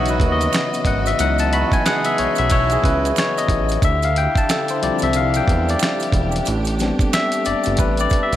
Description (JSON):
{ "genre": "R&B, neo-soul", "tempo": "91 BPM", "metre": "4/4", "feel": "swing 61% on 16ths", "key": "unclear", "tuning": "A4 = 439 Hz", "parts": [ { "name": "barky tine electric piano", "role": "accompaniment", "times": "0.0-8.4 s", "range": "E3 to B5", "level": "-19 LUFS", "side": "left 4 dB", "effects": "overdrive, auto-pan" }, { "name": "warm symphonic string section", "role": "sustained chords", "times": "0.0-8.4 s", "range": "C#3 to D#5", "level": "-28 LUFS", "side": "right 4 dB", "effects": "none" }, { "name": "warm horn section", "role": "stabs", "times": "0.0-3.1 s", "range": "E3 to G#4", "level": "-26 LUFS", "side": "right 6 dB", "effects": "none" }, { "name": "fat analog bass", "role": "bass", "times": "0.0-8.4 s", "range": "E1 to E2", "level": "-21 LUFS", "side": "right 1 dB", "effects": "none" }, { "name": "dusty soul sampler-style drum kit", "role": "drums", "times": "0.1-8.4 s", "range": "finger snaps, hi-hat, kick drum, snare drum", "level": "-21 LUFS", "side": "right 1 dB", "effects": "none" }, { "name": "maracas and finger snaps", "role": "percussion", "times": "0.1-8.4 s", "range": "none", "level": "-32 LUFS", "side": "right 17 dB", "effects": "none" } ], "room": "light reverb, studio reverb", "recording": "faint mains hum", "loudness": "-16 LUFS", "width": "side -12 dB against mid", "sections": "0.0-8.4 A section", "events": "tine electric piano solo 0.0-8.4", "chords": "0.0 C#m11; 3.8 Dm11; 6.5 Am11" }